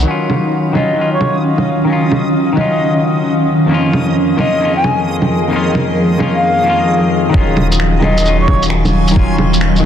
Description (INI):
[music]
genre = future garage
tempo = 132 BPM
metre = 4/4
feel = swing 65% on 16ths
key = Eb minor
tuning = A4 = 442 Hz
[part]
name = semi-hollow electric guitar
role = accompaniment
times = 0.0-9.9 s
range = F2 to F4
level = -16 LUFS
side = left 3 dB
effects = vintage 12-bit sampler grit, sidechain pumping, analog delay
[part]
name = granular cloud pad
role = sustained chords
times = 0.0-9.9 s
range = Eb3 to Db6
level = -17 LUFS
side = right 2 dB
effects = built-in reverb, vintage 12-bit sampler grit, sidechain pumping
[part]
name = warm sub bass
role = bass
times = 0.0-0.1, 7.3-9.9 s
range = Eb1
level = -15 LUFS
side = equal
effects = sidechain pumping
[part]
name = backwards swelling texture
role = texture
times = 0.1-9.9 s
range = Eb5 to Ab5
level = -26 LUFS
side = right 1 dB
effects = built-in reverb
[part]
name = electronic bongos, shaker and finger snaps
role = drums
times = 0.3-9.8 s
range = none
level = -18 LUFS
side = right 2 dB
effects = soft clipping on snare, low-pass filter on snare, vintage 12-bit sampler grit, low-pass filter on perc, low-pass filter on room
[part]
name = bright reedy baroque flute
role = melody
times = 0.7-8.6 s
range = Db5 to Ab5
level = -19 LUFS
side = left 1 dB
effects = tape echo
[part]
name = electronic kick drum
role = drums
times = 7.3-9.3 s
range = none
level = -12 LUFS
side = equal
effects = vintage 12-bit sampler grit
[sound]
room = light reverb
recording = dense, heavily limited modern master, cassette tape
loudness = -11 LUFS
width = side -9 dB against mid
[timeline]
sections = 0.1-7.3 A section; 7.3-9.9 B section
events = none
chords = 0.1 Ebm9; 3.7 Db69/F; 7.3 Ebm9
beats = | 0.07 0.52 0.98 1.43 | 1.89 2.34 2.79 3.25 | 3.70 4.16 4.61 5.07 | 5.52 5.98 6.43 6.89 | 7.34 7.79 8.25 8.70 | 9.16 9.61